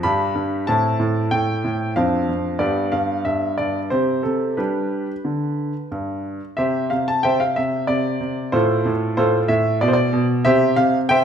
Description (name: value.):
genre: classical-period piano sonatina.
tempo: 93 BPM.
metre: 3/4.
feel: straight.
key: C major.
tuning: A4 = 440 Hz.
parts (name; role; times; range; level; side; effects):
clear baby grand piano; solo; 0.0-11.2 s; F2 to B5; -18 LUFS; equal; none.
room: moderate recital hall reverb, RT60 1.3 s.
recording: minimal, uncompressed stereo recording.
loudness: -18 LUFS.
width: side -8 dB against mid.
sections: 0.0-6.6 A section; 6.6-11.2 B section.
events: none.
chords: 0.0 G; 0.7 Am; 2.0 Dm7/F; 2.6 G; 3.9 C5; 4.6 G; 6.6 C; 8.6 F/A; 9.8 N.C.; 10.5 C.